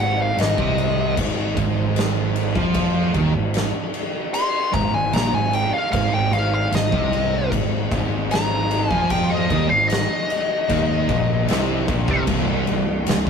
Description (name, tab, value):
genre	stoner and doom metal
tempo	76 BPM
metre	4/4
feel	straight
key	unclear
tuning	A4 = 441 Hz
part	fuzz lead guitar	melody	0.0-12.2 s	Eb5 to C6	-23 LUFS	left 2 dB	wah, distortion, tape echo
part	fuzz guitar	riff	0.0-13.3 s	C2 to F3	-30 LUFS	equal	none
part	thick fuzz guitar	riff	0.0-13.3 s	C2 to F3	-28 LUFS	left 3 dB	distortion
part	thick fuzz guitar	riff	0.0-13.3 s	C2 to F3	-25 LUFS	right 5 dB	distortion
part	fuzz picked electric bass	bass	0.0-13.3 s	C1 to F2	-26 LUFS	equal	overdrive
part	oversized low-tuned drum kit	drums	0.4-13.3 s	crash cymbal, kick drum, snare drum	-23 LUFS	equal	none
room	light reverb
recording	rough rehearsal-room recording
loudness	-18 LUFS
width	side -6 dB against mid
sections	0.0-12.3 A section; 12.3-13.3 B section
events	lead electric guitar solo 0.0-12.3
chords	0.0 Ab5; 12.3 N.C.